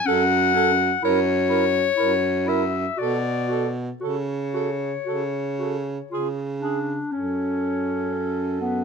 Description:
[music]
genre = classical, lyrical piece for single-reed quartet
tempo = 56-65 BPM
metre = 3/4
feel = rubato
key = F# minor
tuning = A4 = 440 Hz
[part]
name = warm clarinet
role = melody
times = 0.0-8.8 s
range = A4 to F#5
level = -24 LUFS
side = left 8 dB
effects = none
[part]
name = clear alto saxophone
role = second line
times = 0.1-8.8 s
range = G#4 to A#4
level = -27 LUFS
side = right 9 dB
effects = none
[part]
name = warm clarinet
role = accompaniment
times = 0.1-8.8 s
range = B3 to F#4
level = -28 LUFS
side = left 2 dB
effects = none
[part]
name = warm baritone saxophone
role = bass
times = 0.1-8.8 s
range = F#2 to C#3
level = -26 LUFS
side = right 3 dB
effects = none
[sound]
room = light reverb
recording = minimal, uncompressed stereo recording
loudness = -21 LUFS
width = side -5 dB against mid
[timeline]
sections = 0.0-7.1 A section; 7.1-8.8 B section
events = none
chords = 0.1 F#m; 1.0 F#7; 3.0 Bm7; 4.0 F#m/C#; 6.1 C#; 7.1 F#m

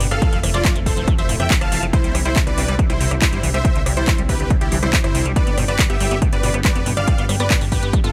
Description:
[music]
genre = uplifting trance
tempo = 140 BPM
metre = 4/4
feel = straight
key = C major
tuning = A4 = 440 Hz
[part]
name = analog string pad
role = sustained chords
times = 0.0-8.1 s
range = C3 to G4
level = -33 LUFS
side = equal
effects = none
[part]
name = liquid acid bass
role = arpeggios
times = 0.0-8.1 s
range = A2 to B3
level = -29 LUFS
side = equal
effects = analog chorus, sidechain pumping, delay
[part]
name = plucky analog bass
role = bass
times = 0.0-8.1 s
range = F1 to F2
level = -25 LUFS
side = equal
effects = sidechain pumping
[part]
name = house drum kit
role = drums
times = 0.0-8.1 s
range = handclaps, hi-hat, rim click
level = -26 LUFS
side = equal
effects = overdrive, sidechain pumping on hats, sidechain pumping on cymbals
[part]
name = dense compressed supersaw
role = melody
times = 0.1-8.1 s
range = E4 to A5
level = -26 LUFS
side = equal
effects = sidechain pumping, delay
[part]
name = electronic kick drum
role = drums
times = 0.2-8.0 s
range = none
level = -21 LUFS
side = equal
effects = overdrive
[sound]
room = digital ambience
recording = none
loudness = -18 LUFS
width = mono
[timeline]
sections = 0.0-8.1 A section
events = none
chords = 0.2 Fmaj7; 1.9 Cadd9; 5.4 G

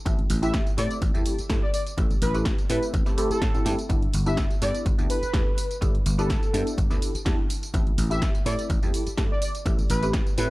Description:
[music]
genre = filtered disco house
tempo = 125 BPM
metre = 4/4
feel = swing 53% on 16ths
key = unclear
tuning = A4 = 440 Hz
[part]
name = funky polysynth comp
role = accompaniment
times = 0.1-10.5 s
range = A3 to B4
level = -30 LUFS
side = equal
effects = chorus, phaser, sidechain pumping
[part]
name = dry thumbed slap bass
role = bass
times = 0.1-10.5 s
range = G1 to A2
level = -27 LUFS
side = equal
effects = sidechain pumping
[part]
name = electronic kick drum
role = drums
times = 0.1-10.2 s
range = none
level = -25 LUFS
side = equal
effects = none
[part]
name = punchy analog drum machine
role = drums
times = 0.1-10.5 s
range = hi-hat, snare drum, tambourine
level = -33 LUFS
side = equal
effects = sidechain pumping on hats, sidechain pumping on cymbals, sidechain pumping on perc
[part]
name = analog synth brass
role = melody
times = 0.4-10.5 s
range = A4 to E5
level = -31 LUFS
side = equal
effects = chorus, cassette tape, sidechain pumping
[sound]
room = digital ambience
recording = dry, gritty hardware recording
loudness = -22 LUFS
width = side -19 dB against mid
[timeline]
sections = 0.0-10.5 A section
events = none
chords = 0.1 Am7; 3.9 G69; 7.7 Am7

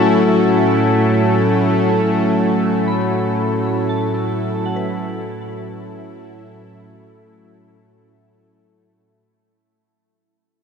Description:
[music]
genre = ambient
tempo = free time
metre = none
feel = none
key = A major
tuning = A4 = 440 Hz
[part]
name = warm analog pad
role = sustained chords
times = 0.0-9.2 s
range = A2 to A4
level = -16 LUFS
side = equal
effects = chorus
[part]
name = soft synth bell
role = arpeggios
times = 0.0-9.2 s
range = E4 to B5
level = -31 LUFS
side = left 3 dB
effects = chorus, phaser, ping-pong delay
[part]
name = bowed-like drone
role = drone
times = 0.0-9.3 s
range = A3 to E4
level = -22 LUFS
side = left 2 dB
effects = built-in reverb, phaser
[sound]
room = wet huge ambient reverb, RT60 7.1 s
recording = cassette tape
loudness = -15 LUFS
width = side -6 dB against mid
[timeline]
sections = 0.0-9.2 A section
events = fade-out on synth bell 0.0-9.2; fade-out 0.0-9.2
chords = 0.0 A69

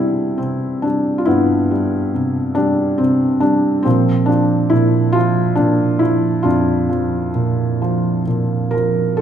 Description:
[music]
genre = classical, lyrical solo piano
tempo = 42-47 BPM (dotted quarters)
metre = 6/8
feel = rubato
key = unclear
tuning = A4 = 441 Hz
[part]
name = felt-muted upright piano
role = solo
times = 0.0-9.2 s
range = F2 to Bb4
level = -14 LUFS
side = right 1 dB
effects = none
[sound]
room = moderate recital hall reverb, RT60 1.5 s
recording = none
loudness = -14 LUFS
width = side -9 dB against mid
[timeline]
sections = 0.0-9.2 A section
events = none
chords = 0.0 Cmaj7; 3.9 Bb

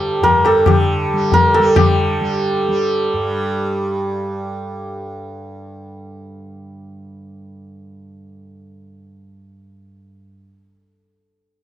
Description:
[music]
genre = indian classical, Hindustani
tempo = 138 BPM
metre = 4/4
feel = straight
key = unclear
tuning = A4 = 440 Hz
[part]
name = santur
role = melody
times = 0.0-5.0 s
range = G4 to D5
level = -17 LUFS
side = right 1 dB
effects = none
[part]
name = tanpura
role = drone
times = 0.0-10.3 s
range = G2 to G3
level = -25 LUFS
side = right 1 dB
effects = none
[part]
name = tabla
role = percussion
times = 0.2-1.9 s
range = none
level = -17 LUFS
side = left 4 dB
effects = none
[sound]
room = small room ambience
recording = dry, close 1970s-style studio recording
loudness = -14 LUFS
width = side -12 dB against mid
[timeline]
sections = 0.0-1.8 A section; 1.8-3.5 B section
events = none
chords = none

